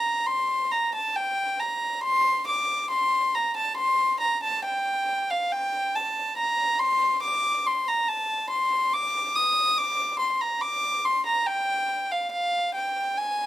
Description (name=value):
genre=classical, baroque-style suite movement for unaccompanied violin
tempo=70 BPM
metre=4/4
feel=rubato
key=unclear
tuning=A4 = 441 Hz
part: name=warm violin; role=solo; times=0.0-13.5 s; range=F5 to Eb6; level=-23 LUFS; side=equal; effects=none
room=light reverb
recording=none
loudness=-23 LUFS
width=side -14 dB against mid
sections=0.0-13.5 A section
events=none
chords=none